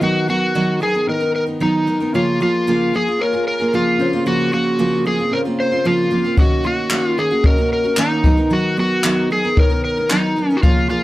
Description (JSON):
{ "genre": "acoustic pop", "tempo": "113 BPM", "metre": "4/4", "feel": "straight", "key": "unclear", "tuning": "A4 = 442 Hz", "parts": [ { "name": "overdriven slide guitar", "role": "melody", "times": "0.0-11.0 s", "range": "Eb4 to C5", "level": "-18 LUFS", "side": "left 1 dB", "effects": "none" }, { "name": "clear upright piano", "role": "accompaniment", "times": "0.0-11.0 s", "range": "Db3 to Eb5", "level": "-26 LUFS", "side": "left 3 dB", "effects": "none" }, { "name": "picked steel-string acoustic guitar", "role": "accompaniment", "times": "0.0-11.0 s", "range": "Db3 to Bb4", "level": "-20 LUFS", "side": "right 2 dB", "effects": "none" }, { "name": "jazz brush drum kit", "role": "drums", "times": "6.4-10.8 s", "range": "handclaps, kick drum", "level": "-16 LUFS", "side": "equal", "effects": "none" } ], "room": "moderate studio reverb, RT60 0.5 s", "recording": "none", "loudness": "-15 LUFS", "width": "side -16 dB against mid", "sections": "0.0-11.0 A section", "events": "none", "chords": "0.0 Cbmaj7/Eb; 2.1 Db6; 4.0 Bbmadd9/Db; 6.4 Ebm7; 8.2 Cbmaj7/Eb" }